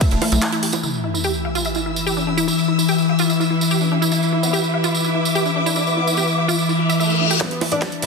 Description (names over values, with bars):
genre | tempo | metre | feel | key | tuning
psychedelic trance | 146 BPM | 4/4 | straight | unclear | A4 = 440 Hz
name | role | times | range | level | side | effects
oud | melody | 0.0-0.8, 7.4-8.1 s | A3 to E4 | -25 LUFS | left 1 dB | phaser, sidechain pumping, digital delay
evolving wavetable pad | sustained chords | 0.0-8.1 s | E3 | -20 LUFS | left 4 dB | chorus, built-in reverb, sidechain pumping
wide unison pluck | riff | 0.0-8.1 s | D4 to F5 | -24 LUFS | right 1 dB | auto-pan, sidechain pumping, tape echo
big-room dance drum kit | drums | 0.0-0.8, 7.4-8.1 s | bongos, handclaps, hi-hat, ride cymbal, snare drum | -24 LUFS | right 3 dB | low-pass filter on hats, low-pass filter on perc, low-pass filter on snare, low-pass filter on cymbals, low-pass filter on room
electronic kick drum | drums | 0.0-0.1, 7.4-7.9 s | none | -20 LUFS | equal | high-pass filter on kick, high-pass filter on room
tambourine | percussion | 0.0-7.4 s | none | -26 LUFS | right 4 dB | none
tight sequencer bass | bass | 0.1-0.4, 7.5-8.1 s | E1 to B1 | -21 LUFS | equal | high-pass filter
sub drop, reverse cymbal and riser | sound effects | 0.8-2.5, 6.8-8.1 s | none | -25 LUFS | left 2 dB | none
warm studio string section | texture | 0.8-8.1 s | E4 to E6 | -24 LUFS | equal | sidechain pumping
formant-sweep wobble bass | second line | 4.4-7.8 s | A3 to D4 | -31 LUFS | left 1 dB | lush chorus, sidechain pumping, high-pass filter, dub echo
room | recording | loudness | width
wet lush hall reverb, RT60 2.3 s | dense, heavily limited modern master | -16 LUFS | side -4 dB against mid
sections
0.8-7.4 A section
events
break 0.4-0.8; impact 0.8-2.5; reverse cymbal 6.8-7.4; drum fill 7.4-8.1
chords
0.0 E5